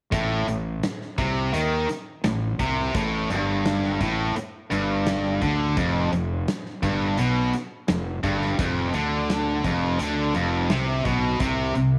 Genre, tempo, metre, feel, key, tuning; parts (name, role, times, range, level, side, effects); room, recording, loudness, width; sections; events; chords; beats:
classic rock; 85 BPM; 4/4; straight; A minor; A4 = 440 Hz
distorted electric guitar; riff; 0.1-12.0 s; F2 to D#3; -29 LUFS; equal; distortion
tight distorted guitar; riff; 0.1-12.0 s; F2 to D#3; -29 LUFS; equal; distortion
fuzz fingered electric bass; bass; 0.1-12.0 s; F1 to D#2; -30 LUFS; equal; overdrive
big rock drum kit; drums; 0.1-11.9 s; hi-hat, kick drum, snare drum; -32 LUFS; equal
light reverb, small room reverb; -24 LUFS; mono
0.1-12.0 A section
0.1 Am; 5.8 F5; 11.4 N.C.
| 0.12 0.82 1.53 2.24 | 2.94 3.65 4.35 5.06 | 5.77 6.47 7.18 7.88 | 8.59 9.29 10.00 10.70 | 11.41